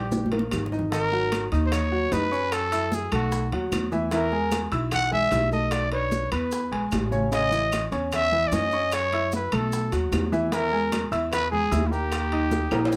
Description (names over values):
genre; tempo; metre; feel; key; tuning
Afro-Cuban jazz; 150 BPM; 4/4; straight; unclear; A4 = 438 Hz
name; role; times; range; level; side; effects
growling trumpet; melody; 0.0-13.0 s; E4 to F#5; -28 LUFS; equal; none
clear concert grand piano; accompaniment; 0.0-13.0 s; C#3 to E6; -31 LUFS; equal; none
upright bass; bass; 0.0-13.0 s; Ab1 to F#2; -31 LUFS; equal; none
bongos; percussion; 0.1-13.0 s; none; -39 LUFS; equal; none
congas; percussion; 0.1-13.0 s; none; -35 LUFS; equal; none
maracas; percussion; 0.1-13.0 s; none; -45 LUFS; equal; none
timbales; percussion; 0.3-12.9 s; none; -36 LUFS; equal; none
claves; percussion; 0.5-12.9 s; none; -39 LUFS; equal; none
room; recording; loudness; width
moderate club reverb, RT60 0.5 s; none; -25 LUFS; mono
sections
0.9-13.0 A section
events
drum fill 0.0-0.9, 12.5-13.0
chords
0.0 Eb; 0.9 G#m9; 2.5 F#m7; 3.3 B7; 4.1 E; 5.7 Bm7; 6.5 E6; 7.3 A; 8.9 F#m7; 9.7 B7; 10.5 E; 12.1 D#